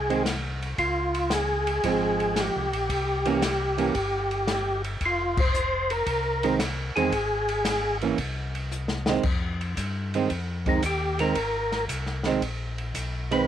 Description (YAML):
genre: soul jazz organ trio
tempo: 114 BPM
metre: 4/4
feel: swing 69% on 8ths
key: F minor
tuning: A4 = 440 Hz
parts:
  - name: percussive tonewheel organ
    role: melody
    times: 0.0-13.5 s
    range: Eb4 to C5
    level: -26 LUFS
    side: left 1 dB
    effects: overdrive, chorus vibrato, stopped rotary speaker, cassette tape
  - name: mellow tonewheel organ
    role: bass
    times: 0.0-13.5 s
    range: F1 to G2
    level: -31 LUFS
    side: left 1 dB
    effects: chorus vibrato, slow rotary speaker
  - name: archtop guitar, miked and amplified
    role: accompaniment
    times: 0.1-13.5 s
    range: Eb3 to Db4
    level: -27 LUFS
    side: right 6 dB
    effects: cassette tape
  - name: open jazz drum kit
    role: drums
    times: 0.1-13.4 s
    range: crash cymbal, hi-hat, kick drum, ride cymbal, snare drum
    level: -30 LUFS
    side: left 1 dB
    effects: cassette tape
room: little or no reverb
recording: home recording on cassette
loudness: -24 LUFS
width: side -10 dB against mid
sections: 0.0-9.2 A section; 9.2-13.5 B section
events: band accent 5.3; drum fill 8.7-9.2; tonewheel organ solo 9.2-13.5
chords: 0.0 Fm7 (rootless); 0.8 Dbmaj7; 2.9 C7b9; 5.0 Fm; 8.2 Cm; 9.2 Fm7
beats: 0.26 | 0.79 1.31 1.84 2.37 | 2.90 3.43 3.95 4.48 | 5.01 5.54 6.07 6.59 | 7.12 7.65 8.18 8.71 | 9.24 9.77 10.30 10.83 | 11.36 11.88 12.41 12.94